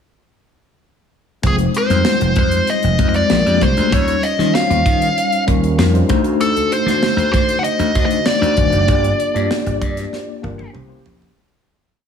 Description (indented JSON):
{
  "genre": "polished 1980s jazz-funk pop",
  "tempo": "97 BPM",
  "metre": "4/4",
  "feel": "straight",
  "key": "unclear",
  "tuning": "A4 = 441 Hz",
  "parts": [
    { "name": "mellow tine electric piano", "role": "accompaniment", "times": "1.4-11.4 s", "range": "G3 to D5", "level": "-19 LUFS", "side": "left 2 dB", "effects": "medium stereo tremolo, wide subtle chorus" },
    { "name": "slap bass", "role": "bass", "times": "1.4-11.3 s", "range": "Eb1 to Eb3", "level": "-18 LUFS", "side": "equal", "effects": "none" },
    { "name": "tight funk drum kit", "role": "drums", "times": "1.4-11.4 s", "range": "hi-hat, kick drum, snare drum, toms", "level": "-20 LUFS", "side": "right 1 dB", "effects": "gated reverb" },
    { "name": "nasal lead guitar with a parked wah", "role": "melody", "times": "1.5-10.7 s", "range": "Ab4 to F#5", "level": "-18 LUFS", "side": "left 1 dB", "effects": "overdrive" }
  ],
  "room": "light reverb, small room ambience",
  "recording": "none",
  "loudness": "-13 LUFS",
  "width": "side -7 dB against mid",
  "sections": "1.4-11.4 verse",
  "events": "fade-out 8.9-11.4; drum fill 10.1-11.4",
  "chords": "1.4 Fm7; 3.3 Bb7; 3.9 Eb13; 6.1 D7b9; 8.9 Gm7; 10.7 C7b9"
}